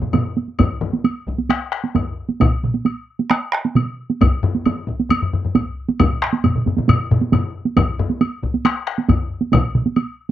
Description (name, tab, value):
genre	japanese traditional, taiko drum ensemble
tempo	134 BPM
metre	4/4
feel	straight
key	none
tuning	none
part	solo taiko drums	percussion	0.0-10.3 s	none	-18 LUFS	right 5 dB	none
part	taiko ensemble	percussion	0.0-9.2 s	none	-22 LUFS	left 4 dB	none
part	taiko ensemble	percussion	0.0-9.9 s	none	-20 LUFS	right 1 dB	none
part	woodblock	percussion	0.1-10.1 s	none	-26 LUFS	left 4 dB	none
part	taiko ensemble	percussion	0.6-9.6 s	none	-21 LUFS	left 2 dB	none
room	light reverb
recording	dry, close 1970s-style studio recording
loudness	-17 LUFS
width	side -12 dB against mid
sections	0.6-10.3 A section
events	speeding up 0.0-10.3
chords	none